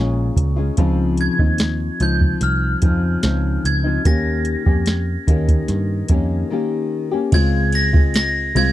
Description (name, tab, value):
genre	indie pop, bedroom pop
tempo	73 BPM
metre	4/4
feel	straight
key	unclear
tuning	A4 = 441 Hz
part	nylon-string guitar	accompaniment	0.0-8.7 s	Bb2 to G4	-22 LUFS	left 4 dB	wide subtle chorus, vibrato effect
part	vintage muted picked electric bass	bass	0.0-8.7 s	Bb1 to G2	-20 LUFS	right 1 dB	none
part	soft vintage rhythm box	drums	0.4-8.7 s	hi-hat, kick drum, ride cymbal, snare drum	-17 LUFS	right 1 dB	none
part	glockenspiel with hard plastic mallets	melody	1.2-8.7 s	F6 to Bb6	-24 LUFS	right 1 dB	lush chorus, slapback echo
room	little or no reverb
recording	dry, close 1970s-style studio recording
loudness	-16 LUFS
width	side -14 dB against mid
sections	0.0-7.3 A section; 7.3-8.7 B section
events	none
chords	0.0 Bbm7; 0.8 Dbmaj9; 4.1 Eb7; 7.3 Dbmaj7